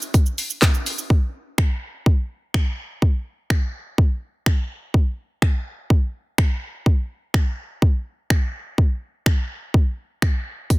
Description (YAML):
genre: pop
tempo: 125 BPM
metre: 4/4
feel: straight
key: none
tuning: none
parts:
  - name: house drum kit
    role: drums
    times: 0.0-10.8 s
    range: finger snaps, handclaps, hi-hat, kick drum, shaker, snare drum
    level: -18 LUFS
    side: equal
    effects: soft clipping on snare
room: little or no reverb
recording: dense, heavily limited modern master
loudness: -20 LUFS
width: side -23 dB against mid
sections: 0.0-1.1 A section; 1.1-10.8 B section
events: none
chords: none